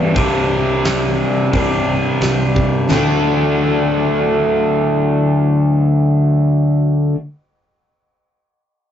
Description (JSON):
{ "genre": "rock, shoegaze and dream pop", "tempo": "88 BPM", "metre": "4/4", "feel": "straight", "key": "D mixolydian", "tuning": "A4 = 440 Hz", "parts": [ { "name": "biting overdriven guitar", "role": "riff", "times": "0.0-7.2 s", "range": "C3 to E4", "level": "-21 LUFS", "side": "right 3 dB", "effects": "none" }, { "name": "crunchy overdriven guitar", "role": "riff", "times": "0.0-7.2 s", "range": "E2 to G4", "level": "-15 LUFS", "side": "left 1 dB", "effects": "none" }, { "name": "growling fingered electric bass", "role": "bass", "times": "0.2-7.1 s", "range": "C2 to D2", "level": "-24 LUFS", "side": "right 1 dB", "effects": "overdrive" }, { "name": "huge arena drum kit", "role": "drums", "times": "0.2-3.1 s", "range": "crash cymbal, hi-hat, kick drum, snare drum, toms", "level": "-22 LUFS", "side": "equal", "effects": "none" } ], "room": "wet booth ambience, RT60 0.2 s", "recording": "rough rehearsal-room recording, nothing above 7.8 kHz", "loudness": "-13 LUFS", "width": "side -9 dB against mid", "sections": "0.0-2.9 A section; 2.9-5.6 B section", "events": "none", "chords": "0.2 Csus2; 2.9 D" }